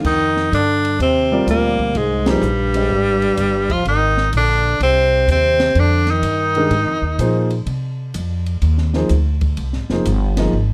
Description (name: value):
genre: modal jazz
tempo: 126 BPM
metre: 4/4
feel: swing 67% on 8ths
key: F dorian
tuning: A4 = 441 Hz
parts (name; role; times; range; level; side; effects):
- breathy trombone; second line; 0.0-7.5 s; G2 to F3; -25 LUFS; equal; none
- warm concert grand piano; accompaniment; 0.0-2.9, 6.6-10.5 s; Eb3 to Eb5; -23 LUFS; equal; none
- upright bass; bass; 0.0-10.7 s; F1 to C3; -21 LUFS; equal; none
- compact cocktail drum kit; drums; 0.0-10.4 s; crash cymbal, hi-hat, kick drum, ride cymbal, snare drum; -30 LUFS; equal; none
- clear tenor saxophone; melody; 0.1-7.5 s; G3 to F4; -20 LUFS; equal; plate reverb
room: light reverb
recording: close, detailed microphones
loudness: -17 LUFS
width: mono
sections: 0.0-10.7 A section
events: band accent 2.2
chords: 0.0 Fm9